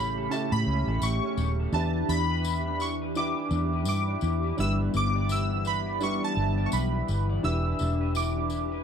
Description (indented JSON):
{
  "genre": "indie pop, bedroom pop",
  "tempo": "84 BPM",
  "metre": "4/4",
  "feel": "swing 60% on 16ths",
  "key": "unclear",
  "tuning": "A4 = 440 Hz",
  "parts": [
    { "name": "chorused retro synth keys", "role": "melody", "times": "0.0-8.8 s", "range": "A5 to E6", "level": "-31 LUFS", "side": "right 1 dB", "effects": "analog chorus, slapback echo" },
    { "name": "electric guitar through a small old amp", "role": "accompaniment", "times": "0.0-8.8 s", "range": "A2 to D5", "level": "-33 LUFS", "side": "left 3 dB", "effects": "analog chorus, vibrato effect" },
    { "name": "warm upright piano", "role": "accompaniment", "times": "0.0-8.8 s", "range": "C#4 to E5", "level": "-35 LUFS", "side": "right 4 dB", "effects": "cassette tape" },
    { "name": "hollow soft pad", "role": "sustained chords", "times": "0.0-8.8 s", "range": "C#3 to G4", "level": "-36 LUFS", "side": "left 1 dB", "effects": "ensemble chorus" },
    { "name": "vintage muted fingered electric bass", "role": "bass", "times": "0.0-8.8 s", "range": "Eb1 to A2", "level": "-28 LUFS", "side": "equal", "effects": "none" },
    { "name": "tambourine", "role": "percussion", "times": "0.3-8.7 s", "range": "none", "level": "-42 LUFS", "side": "left 14 dB", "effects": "none" }
  ],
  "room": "light reverb",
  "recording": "dry, close 1970s-style studio recording",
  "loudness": "-25 LUFS",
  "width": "side -7 dB against mid",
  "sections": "0.0-8.8 A section",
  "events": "none",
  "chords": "0.0 A7; 1.7 Em7; 4.6 G6; 7.4 Em7",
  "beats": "0.31 1.03 | 1.74 2.45 3.16 3.88 | 4.59 5.30 6.01 6.73 | 7.44 8.15"
}